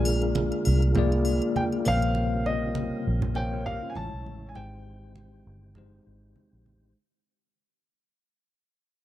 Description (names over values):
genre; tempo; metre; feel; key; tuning
lush 1970s-style soul; 100 BPM; 4/4; swing 54% on 16ths; unclear; A4 = 438 Hz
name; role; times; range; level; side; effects
bell-like tine electric piano; accompaniment; 0.0-7.0 s; G#3 to G5; -29 LUFS; left 3 dB; medium stereo tremolo
tonewheel organ; sustained chords; 0.0-6.9 s; C3 to G4; -34 LUFS; right 2 dB; slow rotary speaker, overdrive, chorus vibrato
vintage muted fingered electric bass; bass; 0.0-6.9 s; G1 to C2; -27 LUFS; equal; none
congas; percussion; 0.1-6.8 s; none; -34 LUFS; right 4 dB; none
triangle; percussion; 0.1-2.2 s; none; -38 LUFS; left 3 dB; none
clear baby grand piano; melody; 1.6-6.3 s; Eb5 to A5; -32 LUFS; left 1 dB; none
mellow electric guitar; riff; 3.5-4.1 s; Db4 to Db5; -46 LUFS; right 8 dB; none
room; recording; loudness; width
light reverb, small room ambience; dark, warm production; -23 LUFS; side -13 dB against mid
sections
0.0-7.0 A section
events
fade-out 0.0-7.0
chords
0.0 Bb7; 1.9 Eb13/Bb; 4.0 Amaj7; 4.6 Abmaj7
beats
0.36 0.96 1.56 | 2.16 2.76 3.36 3.96 | 4.56 5.16 5.76 6.36